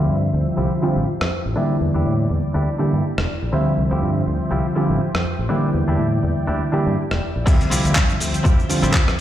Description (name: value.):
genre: filtered disco house.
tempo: 122 BPM.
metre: 4/4.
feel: swing 56% on 16ths.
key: D minor.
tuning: A4 = 440 Hz.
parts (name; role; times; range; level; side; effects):
overdriven reed electric piano; accompaniment; 0.0-8.9 s; D3 to E5; -21 LUFS; equal; phaser, sidechain pumping, low-pass filter.
string machine, full ensemble; sustained chords; 0.0-9.2 s; F3 to G5; -28 LUFS; equal; ensemble chorus, vintage 12-bit sampler grit, sidechain pumping, low-pass filter.
direct-recorded clean electric guitar; riff; 0.0-9.1 s; C4 to G4; -29 LUFS; equal; spring reverb, sidechain pumping, low-pass filter.
fingered electric bass; bass; 0.0-9.2 s; E1 to A2; -22 LUFS; equal; sidechain pumping, low-pass filter.
dusty soul sampler-style drum kit; drums; 1.2-9.2 s; cabasa, crash cymbal, handclaps, hi-hat, rim click; -24 LUFS; equal; overdrive, small room ambience, sidechain pumping on cymbals, sidechain pumping on perc, sidechain pumping on hats.
electronic kick drum; drums; 7.5-9.1 s; none; -17 LUFS; equal; small room ambience.
room: light reverb, digital ambience.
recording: played on a big sound system in a bare room, large studio reverb.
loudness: -17 LUFS.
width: side -12 dB against mid.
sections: 0.0-7.5 A section; 7.5-9.2 B section.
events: filter sweep 0.0-7.5; drop 7.5-9.2.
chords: 0.0 Dm11; 1.6 Em7b5; 3.5 Dm11; 5.5 Em7b5; 7.5 Dm11.